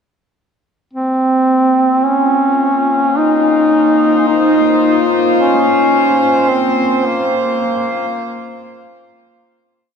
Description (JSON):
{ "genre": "ambient", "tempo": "54 BPM", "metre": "4/4", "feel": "straight", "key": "Bb minor", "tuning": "A4 = 440 Hz", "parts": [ { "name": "warm duduk", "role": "melody", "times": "0.9-9.3 s", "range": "Bb3 to Eb4", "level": "-12 LUFS", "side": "equal", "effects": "ping-pong delay" }, { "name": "warm studio cello section", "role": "sustained chords", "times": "0.9-9.8 s", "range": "Bb3 to C5", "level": "-17 LUFS", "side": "left 2 dB", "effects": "none" } ], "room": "wet huge ambient reverb, RT60 7.5 s", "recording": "dreamy mix soaked in reverb", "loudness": "-11 LUFS", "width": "side -6 dB against mid", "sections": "0.9-9.8 A section", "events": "fade-in on cello section 0.9-9.8; fade-out 5.4-9.8", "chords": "0.9 Bbsus2" }